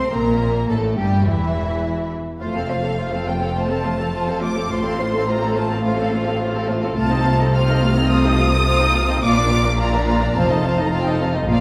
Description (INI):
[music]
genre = quick classical-period movement for string orchestra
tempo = 106 BPM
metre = 4/4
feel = rubato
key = F major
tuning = A4 = 440 Hz
[part]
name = warm symphonic violin section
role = melody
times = 0.0-11.6 s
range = E5 to F6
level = -27 LUFS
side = equal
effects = none
[part]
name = rich studio violin section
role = second line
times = 0.0-11.6 s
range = E4 to F5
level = -28 LUFS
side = equal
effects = none
[part]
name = rich symphonic viola section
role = accompaniment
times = 0.0-11.6 s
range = E3 to A4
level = -25 LUFS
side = equal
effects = none
[part]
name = clear symphonic double bass section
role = bass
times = 0.1-11.6 s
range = E1 to C2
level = -25 LUFS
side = equal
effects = none
[part]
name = rich symphonic cello section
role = bass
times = 0.1-11.6 s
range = E2 to C3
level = -26 LUFS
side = equal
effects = none
[sound]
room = wet recital hall reverb, RT60 1.5 s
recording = heard from further back in the room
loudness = -19 LUFS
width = mono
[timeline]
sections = 0.0-11.6 A section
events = none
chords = 0.1 Gm69; 2.4 F; 4.7 F/A; 7.0 F7/C; 9.2 Bb; 10.4 F7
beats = | 0.11 0.69 1.27 1.84 | 2.41 2.98 3.56 4.13 | 4.70 5.27 5.84 6.40 | 6.97 7.53 8.09 8.65 | 9.22 9.79 10.35 10.92 | 11.48